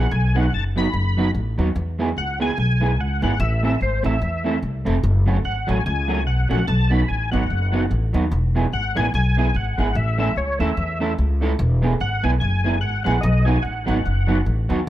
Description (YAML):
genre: ska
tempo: 146 BPM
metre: 4/4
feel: swing 58% on 8ths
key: E major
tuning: A4 = 440 Hz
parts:
  - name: overdriven tonewheel organ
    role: melody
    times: 0.0-14.4 s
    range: C5 to B5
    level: -26 LUFS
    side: left 1 dB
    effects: chorus vibrato, slow rotary speaker
  - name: electric guitar at the edge of break-up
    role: accompaniment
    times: 0.0-14.8 s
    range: F#3 to A4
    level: -24 LUFS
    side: right 3 dB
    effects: dub echo
  - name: upright bass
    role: bass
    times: 0.0-14.8 s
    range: E1 to E2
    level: -20 LUFS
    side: equal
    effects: none
room: light reverb, small room ambience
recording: none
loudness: -18 LUFS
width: side -13 dB against mid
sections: 0.0-14.9 A section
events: none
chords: 0.1 B; 1.8 E; 3.4 Am; 5.0 F#m; 6.7 B; 8.3 E; 10.0 A; 11.6 E; 13.2 B